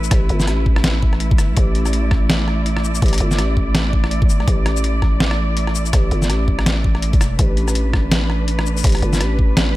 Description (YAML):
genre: half-time drum and bass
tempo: 165 BPM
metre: 4/4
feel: swing 59% on 16ths, half-time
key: unclear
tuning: A4 = 440 Hz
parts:
  - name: muted studio cello section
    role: sustained chords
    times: 0.0-9.8 s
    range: A3 to D5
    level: -25 LUFS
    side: right 1 dB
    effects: sidechain pumping
  - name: growling 808-style bass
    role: bass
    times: 0.0-9.8 s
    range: E1 to B1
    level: -19 LUFS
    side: equal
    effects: none
  - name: boom bap sampler-style drum kit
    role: drums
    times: 0.0-9.7 s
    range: hi-hat, rim click, shaker, snare drum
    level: -21 LUFS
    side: equal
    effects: none
  - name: electronic kick drum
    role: drums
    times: 0.1-9.5 s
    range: none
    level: -16 LUFS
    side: equal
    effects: overdrive
room: digital ambience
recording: none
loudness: -15 LUFS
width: side -17 dB against mid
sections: 0.0-9.8 A section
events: none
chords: 0.0 Asus2